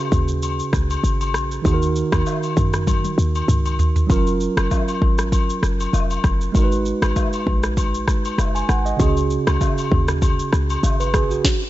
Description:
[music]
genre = afrobeats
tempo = 98 BPM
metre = 4/4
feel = swing 55% on 16ths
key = F# major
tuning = A4 = 440 Hz
[part]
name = mellow tine electric piano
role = accompaniment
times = 0.0-11.6 s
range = C#3 to G#5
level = -23 LUFS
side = right 4 dB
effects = none
[part]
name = short 808-style bass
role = bass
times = 0.1-11.4 s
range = E#1 to F#2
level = -21 LUFS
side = equal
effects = none
[part]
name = afro-pop drum kit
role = drums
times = 0.1-11.6 s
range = kick drum, rim click, shaker, snare drum, toms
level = -21 LUFS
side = equal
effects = none
[part]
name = agogo bells and woodblock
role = percussion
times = 0.4-11.1 s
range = none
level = -28 LUFS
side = left 7 dB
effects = none
[sound]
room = little or no reverb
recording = nothing above 7.9 kHz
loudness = -17 LUFS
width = side -15 dB against mid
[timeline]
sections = 0.0-4.1 A section; 4.1-11.7 B section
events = drum fill 2.9-4.1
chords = 0.0 C#sus4; 1.6 D#m; 4.1 F#maj7; 6.5 G#m7; 9.0 C#sus4

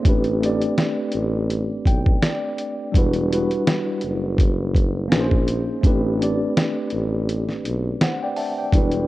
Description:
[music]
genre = lo-fi hip hop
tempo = 83 BPM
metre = 4/4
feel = swing 56% on 16ths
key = unclear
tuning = A4 = 441 Hz
[part]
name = mellow tine electric piano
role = accompaniment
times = 0.0-9.1 s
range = G3 to A5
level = -23 LUFS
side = equal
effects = medium stereo tremolo, cassette tape
[part]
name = lo-fi sampler-style drum kit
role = drums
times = 0.0-9.1 s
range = hi-hat, kick drum, snare drum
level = -19 LUFS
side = equal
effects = none
[part]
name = mellow tuba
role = bass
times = 0.1-9.1 s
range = E1 to B1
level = -24 LUFS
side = equal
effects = none
[sound]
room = little or no reverb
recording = worn, warbling old tape, cassette tape, warbly pitch drift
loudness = -19 LUFS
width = side -17 dB against mid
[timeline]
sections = 0.0-9.1 A section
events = break 7.3-8.7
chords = 0.1 Am11; 2.9 Em9; 5.1 A#m11; 5.8 Am11

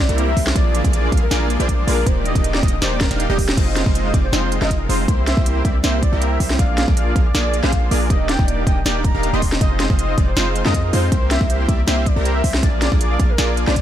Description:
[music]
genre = future bass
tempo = 159 BPM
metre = 4/4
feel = swing 53% on 16ths, half-time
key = F dorian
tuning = A4 = 441 Hz
[part]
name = warm velvety synth lead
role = melody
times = 0.0-13.8 s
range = G4 to C6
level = -26 LUFS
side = left 1 dB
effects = chorus, sidechain pumping, ping-pong delay
[part]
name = shimmering ambient pad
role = sustained chords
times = 0.1-3.6 s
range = C3 to G4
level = -31 LUFS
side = right 1 dB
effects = none
[part]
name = supersaw stab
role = riff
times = 0.0-13.8 s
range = Ab3 to F5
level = -22 LUFS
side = right 1 dB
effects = sidechain pumping
[part]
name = warm 808-style bass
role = bass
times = 0.0-13.8 s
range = Eb1 to F2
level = -20 LUFS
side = equal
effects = sidechain pumping
[part]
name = trap drum kit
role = drums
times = 0.1-13.8 s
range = crash cymbal, hi-hat, snare drum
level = -24 LUFS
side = equal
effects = studio reverb
[part]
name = electronic kick drum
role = drums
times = 0.4-13.8 s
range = none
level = -18 LUFS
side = equal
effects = studio reverb
[sound]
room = digital ambience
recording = none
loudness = -15 LUFS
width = side -11 dB against mid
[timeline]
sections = 0.0-3.6 A section; 3.6-13.8 A section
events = drop 0.0-3.6, 3.6-13.8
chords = 0.0 C7; 0.6 Bb7; 2.1 Ebmaj7; 3.6 Fm7; 5.1 C7; 6.6 Bb7; 8.1 Ebmaj7; 9.6 Fm7; 11.1 C7; 12.6 Bb7

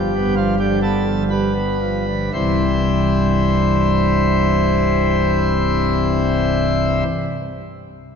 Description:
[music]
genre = classical, chorale-style piece for pipe organ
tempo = 57 BPM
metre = 3/4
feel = rubato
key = C major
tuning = A4 = 440 Hz
[part]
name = pipe organ, principal chorus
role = solo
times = 0.0-7.0 s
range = C1 to C5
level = -16 LUFS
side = equal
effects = none
[sound]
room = wet church reverb, RT60 2.9 s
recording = nothing above 7.6 kHz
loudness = -15 LUFS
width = side -7 dB against mid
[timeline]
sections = 0.0-2.3 A section; 2.3-8.2 B section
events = slowing down 0.0-2.3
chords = 0.0 G7; 2.3 C

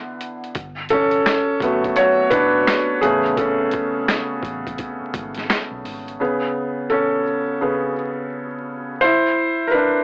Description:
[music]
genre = lo-fi hip hop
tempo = 85 BPM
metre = 4/4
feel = swing 63% on 16ths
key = A major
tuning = A4 = 443 Hz
[part]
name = felt-muted upright piano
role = accompaniment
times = 0.0-10.0 s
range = C#3 to C#5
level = -18 LUFS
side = equal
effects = none
[part]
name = boom bap sampler-style drum kit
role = drums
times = 0.2-6.2 s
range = finger snaps, hi-hat, kick drum, snare drum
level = -22 LUFS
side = equal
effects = none
[part]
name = vintage muted fingered electric bass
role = bass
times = 0.6-6.2 s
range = F#1 to B1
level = -38 LUFS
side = equal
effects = none
[sound]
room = light reverb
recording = dry, gritty hardware recording, vinyl crackle, AM radio sound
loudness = -17 LUFS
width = side -38 dB against mid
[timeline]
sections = 0.0-6.2 A section; 6.2-10.0 B section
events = felt piano solo 0.0-6.2, 6.2-10.0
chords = 0.0 Cmaj9 (rootless); 0.6 Gmaj9; 3.0 Amaj9; 9.0 Cmaj9

